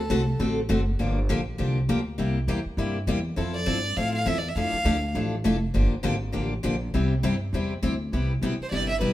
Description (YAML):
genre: acoustic string swing (jazz manouche)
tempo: 202 BPM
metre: 4/4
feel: swing 59% on 8ths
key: unclear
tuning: A4 = 440 Hz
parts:
  - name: rich violin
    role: melody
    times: 0.0-0.4, 3.5-5.1, 8.6-9.1 s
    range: A4 to F5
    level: -28 LUFS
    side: right 1 dB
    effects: none
  - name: upright bass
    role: bass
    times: 0.0-9.1 s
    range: F1 to A2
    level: -27 LUFS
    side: equal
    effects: none
  - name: picked steel-string acoustic guitar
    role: accompaniment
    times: 0.1-9.1 s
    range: C3 to A4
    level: -27 LUFS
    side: left 2 dB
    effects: none
room: moderate stone room reverb, RT60 1.1 s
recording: band playing live in one room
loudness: -23 LUFS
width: side -14 dB against mid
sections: 0.0-8.1 A section; 8.1-9.1 B section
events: none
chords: 0.0 D7; 1.0 Gm7; 2.2 C7; 3.4 Fmaj7; 4.6 Dmadd9; 5.7 Gm7; 6.9 C; 8.1 Cmaj7